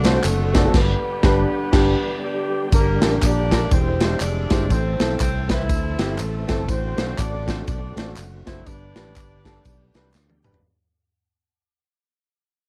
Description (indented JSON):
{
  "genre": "uptempo gospel",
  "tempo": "121 BPM",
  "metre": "4/4",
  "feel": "swing 60% on 8ths",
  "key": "unclear",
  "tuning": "A4 = 439 Hz",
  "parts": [
    { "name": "dark horn section", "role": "melody", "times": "0.0-10.2 s", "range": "G3 to E5", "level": "-30 LUFS", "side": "equal", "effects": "cassette tape" },
    { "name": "warm upright piano", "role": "accompaniment", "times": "0.0-10.6 s", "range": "G2 to D5", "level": "-27 LUFS", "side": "equal", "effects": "cassette tape" },
    { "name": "overdriven tonewheel organ", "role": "sustained chords", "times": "0.0-10.6 s", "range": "D3 to A4", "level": "-34 LUFS", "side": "equal", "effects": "slow rotary speaker, chorus vibrato, cassette tape" },
    { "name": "fingered electric bass", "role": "bass", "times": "0.0-10.6 s", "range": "E1 to D2", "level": "-26 LUFS", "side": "equal", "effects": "none" },
    { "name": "modern studio drum kit", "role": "drums", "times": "0.0-10.6 s", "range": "crash cymbal, kick drum, ride cymbal, snare drum, toms", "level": "-24 LUFS", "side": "equal", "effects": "cassette tape" },
    { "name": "tambourine and handclaps", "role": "percussion", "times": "0.0-10.5 s", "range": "none", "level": "-36 LUFS", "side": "equal", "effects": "none" }
  ],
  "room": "light reverb",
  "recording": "home recording on cassette",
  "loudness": "-20 LUFS",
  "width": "mono",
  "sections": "0.0-2.7 A section; 2.7-10.6 B section",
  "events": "band accent 0.7-2.7; fade-out 2.7-10.6; drum fill 10.1-10.6",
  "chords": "0.0 D7; 0.7 G; 2.7 Gm; 3.7 E7alt; 4.7 Am; 6.7 D7/A; 8.7 G",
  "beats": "0.24 | 0.74 1.24 1.73 2.23 | 2.72 3.22 3.71 4.21 | 4.71 5.20 5.70 6.19 | 6.69 7.18 7.68 8.17 | 8.67 9.16 9.65 10.15"
}